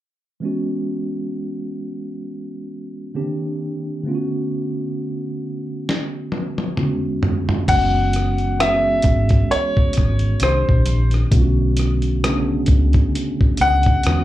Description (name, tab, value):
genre	R&B, neo-soul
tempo	66 BPM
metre	4/4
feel	swing 57% on 16ths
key	B dorian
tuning	A4 = 441 Hz
part	mellow tine electric piano	accompaniment	0.4-14.2 s	E2 to G#4	-23 LUFS	right 1 dB	fast stereo tremolo, slapback echo
part	dusty soul sampler-style drum kit	drums	5.9-14.2 s	crash cymbal, hi-hat, kick drum, rim click, snare drum, toms	-19 LUFS	equal	none
part	bright grand piano	melody	7.7-14.2 s	C5 to F#5	-19 LUFS	left 1 dB	slapback echo
part	vintage muted fingered electric bass	bass	7.7-14.2 s	F#1 to E2	-19 LUFS	equal	none
room	moderate club reverb, RT60 0.5 s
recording	live gig heard through the venue's PA, club ambience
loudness	-17 LUFS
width	side -14 dB against mid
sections	0.4-7.7 A section; 7.7-14.2 B section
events	drum fill 5.9-7.7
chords	0.4 F#9sus4; 3.1 Cm9; 4.0 Bm9; 6.8 E13; 7.7 F#9sus4; 10.4 Cm9; 11.3 Bm9